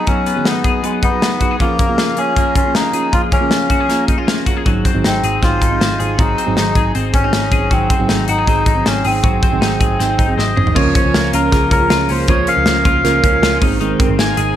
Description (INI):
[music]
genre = jangly indie pop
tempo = 157 BPM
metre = 4/4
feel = straight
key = unclear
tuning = A4 = 440 Hz
[part]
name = melodica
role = melody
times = 0.0-14.6 s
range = Ab3 to Ab5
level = -18 LUFS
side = left 1 dB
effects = slapback echo
[part]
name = fingerpicked plugged-in steel-string acoustic guitar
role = accompaniment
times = 0.0-14.6 s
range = Ab2 to Bb4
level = -22 LUFS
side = right 6 dB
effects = none
[part]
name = twelve-string electric guitar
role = arpeggios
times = 0.0-14.6 s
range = Eb3 to Ab4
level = -21 LUFS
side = left 6 dB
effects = analog chorus
[part]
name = modern studio drum kit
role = drums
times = 0.1-14.5 s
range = crash cymbal, hi-hat, kick drum, snare drum, toms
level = -16 LUFS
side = equal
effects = none
[part]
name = vintage muted picked electric bass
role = bass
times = 4.7-14.5 s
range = Ab1 to Db2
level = -20 LUFS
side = equal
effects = none
[part]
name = warbly lo-fi synth keys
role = accompaniment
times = 10.7-14.6 s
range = C4 to Db5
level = -21 LUFS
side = right 5 dB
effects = chorus, slapback echo
[sound]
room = moderate recital hall reverb, RT60 1.5 s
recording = big arena sound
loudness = -12 LUFS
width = side -11 dB against mid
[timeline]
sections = 0.0-10.8 A section; 10.8-14.6 B section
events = drum fill 10.4-10.8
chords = 0.0 Abm7; 1.6 Db6; 4.7 Ab7; 10.8 Bbm/Db; 13.6 Abadd9